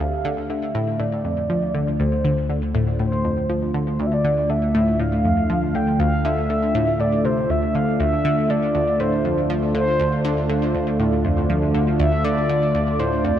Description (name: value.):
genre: ambient, sequencer-driven space music.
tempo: 120 BPM.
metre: 4/4.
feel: straight.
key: D minor.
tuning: A4 = 440 Hz.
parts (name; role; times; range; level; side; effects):
mellow horn-like synth lead; melody; 0.0-13.4 s; C5 to G5; -24 LUFS; equal; chorus, tape echo.
sweeping resonant pad; sustained chords; 0.0-13.4 s; D3 to G4; -23 LUFS; equal; chorus.
analog pluck; riff; 0.0-13.4 s; D2 to F3; -24 LUFS; equal; chorus, phaser, tape echo.
fat analog bass; bass; 0.0-13.4 s; D2; -27 LUFS; equal; tube saturation.
room: wet lush hall reverb, RT60 2.7 s.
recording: none.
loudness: -18 LUFS.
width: side -10 dB against mid.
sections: 0.0-13.4 A section.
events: none.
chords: 0.0 Dm7.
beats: | 0.00 0.50 1.00 1.50 | 2.00 2.50 3.00 3.50 | 4.00 4.50 5.00 5.50 | 6.00 6.50 7.00 7.50 | 8.00 8.50 9.00 9.50 | 10.00 10.50 11.00 11.50 | 12.00 12.50 13.00.